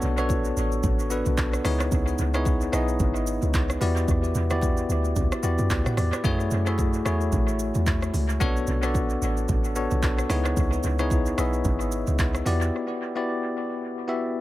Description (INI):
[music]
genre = amapiano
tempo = 111 BPM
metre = 4/4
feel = swing 58% on 16ths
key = unclear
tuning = A4 = 441 Hz
[part]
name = bell-like tine electric piano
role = accompaniment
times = 0.0-14.4 s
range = A3 to F#5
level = -26 LUFS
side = left 2 dB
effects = medium stereo tremolo, dub echo
[part]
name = deep log drum bass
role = bass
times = 0.0-12.7 s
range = G#1 to F#2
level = -26 LUFS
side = equal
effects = none
[part]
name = afro-pop drum kit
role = drums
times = 0.0-12.7 s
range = handclaps, hi-hat, kick drum, rim click, shaker, toms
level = -28 LUFS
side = equal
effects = dub echo
[part]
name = bongos and congas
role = percussion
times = 0.0-12.6 s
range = none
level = -38 LUFS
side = right 4 dB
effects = none
[sound]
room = little or no reverb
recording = echo-heavy mix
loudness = -22 LUFS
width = side -16 dB against mid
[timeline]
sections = 0.0-14.4 A section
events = break 12.7-14.4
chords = 0.0 Bm9; 1.6 C#m9; 3.8 Em9; 6.2 F#m9; 8.4 Bm9; 10.3 C#m9; 12.5 Em9